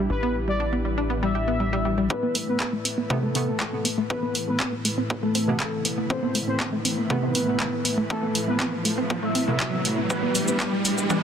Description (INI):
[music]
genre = melodic techno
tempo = 120 BPM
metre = 4/4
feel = straight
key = A minor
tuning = A4 = 439 Hz
[part]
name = dark analog pad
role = sustained chords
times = 0.0-11.2 s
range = A3 to B4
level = -33 LUFS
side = left 2 dB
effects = chorus, sidechain pumping
[part]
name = wide unison pluck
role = arpeggios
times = 0.0-11.2 s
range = G3 to A4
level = -28 LUFS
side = equal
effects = sidechain pumping, digital delay
[part]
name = tight sequencer bass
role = bass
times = 0.0-2.1 s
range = A1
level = -29 LUFS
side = equal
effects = sidechain pumping
[part]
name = swarming drone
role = drone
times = 0.0-11.2 s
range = A2 to E3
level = -35 LUFS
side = left 1 dB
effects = built-in reverb, sidechain pumping
[part]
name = analog synth brass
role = melody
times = 0.1-11.2 s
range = A3 to E5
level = -29 LUFS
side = equal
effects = chorus, sidechain pumping, dub echo
[part]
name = electronic kick drum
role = drums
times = 2.1-11.2 s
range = none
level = -29 LUFS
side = equal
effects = high-pass filter on kick
[part]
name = riser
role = sound effects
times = 4.9-11.2 s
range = none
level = -31 LUFS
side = right 1 dB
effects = none
[part]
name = punchy analog drum machine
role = drums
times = 2.4-11.2 s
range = handclaps, hi-hat, shaker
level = -28 LUFS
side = equal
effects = none
[part]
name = synth brass stab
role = stabs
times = 3.1-11.2 s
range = C3 to D4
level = -31 LUFS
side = right 1 dB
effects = chorus, sidechain pumping, digital delay
[sound]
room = light reverb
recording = dense, heavily limited modern master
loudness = -22 LUFS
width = side -8 dB against mid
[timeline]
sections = 0.0-2.1 A section; 2.1-11.2 B section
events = build-up 2.1-11.2; filter sweep on synth pluck 2.1-11.2; filter sweep on analog polysynth 2.1-11.2; riser 4.9-11.2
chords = 0.0 Em7/A; 2.1 Amadd9; 10.1 Em7/A